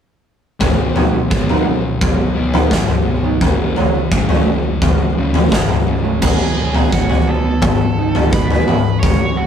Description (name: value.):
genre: quiet-loud alternative rock.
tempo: 85 BPM.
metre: 4/4.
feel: straight.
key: B mixolydian.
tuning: A4 = 440 Hz.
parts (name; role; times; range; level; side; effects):
thick fuzz guitar; riff; 0.6-6.2 s; F#2 to B3; -22 LUFS; left 3 dB; distortion.
fuzz picked electric bass; bass; 0.6-9.5 s; F#1 to B2; -25 LUFS; equal; none.
big rock drum kit; drums; 0.6-9.2 s; crash cymbal, kick drum, snare drum, toms; -14 LUFS; equal; none.
fingerpicked steel-string acoustic guitar; arpeggios; 0.8-9.5 s; F#2 to D#4; -23 LUFS; right 6 dB; none.
octave-fuzz lead guitar; melody; 6.2-9.5 s; F#4 to C#5; -24 LUFS; right 3 dB; distortion.
room: light reverb.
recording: rough rehearsal-room recording.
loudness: -13 LUFS.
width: side -8 dB against mid.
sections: 0.6-6.2 A section; 6.2-9.5 B section.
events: none.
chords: 0.6 B; 3.4 F#m; 6.2 B.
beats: | 0.61 1.31 2.02 2.72 | 3.42 4.12 4.83 5.53 | 6.23 6.93 7.63 8.34 | 9.04.